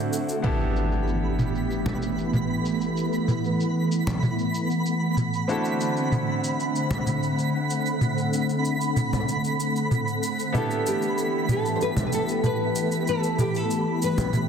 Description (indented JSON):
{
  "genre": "sunset chillout",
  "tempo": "95 BPM",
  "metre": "4/4",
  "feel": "straight",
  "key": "G major",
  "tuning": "A4 = 440 Hz",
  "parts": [
    { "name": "nylon-string guitar", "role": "melody", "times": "0.0-0.1, 10.6-14.5 s", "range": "G4 to C5", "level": "-27 LUFS", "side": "equal", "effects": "vintage 12-bit sampler grit, ping-pong delay" },
    { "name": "clear concert grand piano", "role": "accompaniment", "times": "0.0-14.5 s", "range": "B3 to C5", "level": "-33 LUFS", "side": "equal", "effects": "auto-pan, ping-pong delay" },
    { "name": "soft string machine", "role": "sustained chords", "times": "0.0-14.5 s", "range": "D3 to F#5", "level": "-26 LUFS", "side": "equal", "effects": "phaser, ensemble chorus" },
    { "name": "electronic cabasa and toms", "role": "drums", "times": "0.1-14.5 s", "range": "none", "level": "-28 LUFS", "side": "right 2 dB", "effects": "low-pass filter on perc, low-pass filter on toms, soft clipping on snare, low-pass filter on snare, low-pass filter on room" },
    { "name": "impact", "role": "sound effects", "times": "0.4-3.0 s", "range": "none", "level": "-29 LUFS", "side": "equal", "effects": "none" },
    { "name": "twinkling granular texture", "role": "texture", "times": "1.0-14.5 s", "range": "B5", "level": "-32 LUFS", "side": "right 4 dB", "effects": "built-in reverb" },
    { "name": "congas", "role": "percussion", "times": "1.9-14.3 s", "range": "none", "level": "-28 LUFS", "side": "left 1 dB", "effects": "none" }
  ],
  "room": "moderate plate reverb, RT60 2.4 s",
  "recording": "dense, heavily limited modern master",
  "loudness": "-22 LUFS",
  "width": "side -7 dB against mid",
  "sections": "0.4-14.5 A section",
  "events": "impact 0.4-3.0; filter sweep on drum 0.4-14.5; filter sweep on string machine 0.4-14.5",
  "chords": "0.4 G69; 5.5 D7; 10.5 G69",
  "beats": "| 0.44 1.07 1.70 2.33 | 2.96 3.60 4.23 4.86 | 5.49 6.12 6.75 7.38 | 8.02 8.65 9.28 9.91 | 10.54 11.18 11.81 12.44 | 13.07 13.70 14.33"
}